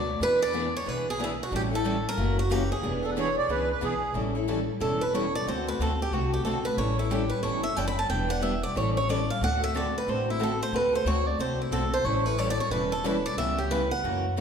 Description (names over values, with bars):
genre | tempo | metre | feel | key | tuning
acoustic string swing (jazz manouche) | 182 BPM | 4/4 | swing 61% on 8ths | A mixolydian | A4 = 439 Hz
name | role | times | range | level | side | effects
picked swing-style acoustic guitar | melody | 0.0-14.3 s | E4 to B5 | -28 LUFS | right 1 dB | none
upright bass | bass | 0.0-14.4 s | E1 to F#2 | -31 LUFS | left 1 dB | none
picked steel-string acoustic guitar | accompaniment | 0.2-14.4 s | C#3 to A4 | -32 LUFS | left 4 dB | none
picked steel-string acoustic guitar | accompaniment | 0.2-14.4 s | C#3 to B4 | -33 LUFS | right 4 dB | none
accordion | second line | 3.0-4.1 s | G#4 to D5 | -28 LUFS | right 2 dB | light tremolo tuning
room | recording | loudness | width
wet recital hall reverb, RT60 1.3 s | recorded in a church or concert hall | -25 LUFS | side -7 dB against mid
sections
0.0-4.2 A section; 4.2-14.4 B section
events
steel-string acoustic guitar solo 4.2-14.4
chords
0.2 E7; 1.5 A7; 2.2 F#7; 2.8 E7; 4.2 A7; 5.5 D7; 6.8 A7; 8.1 Em7; 8.8 A7; 9.4 D7; 12.1 A7; 13.4 C#m7b5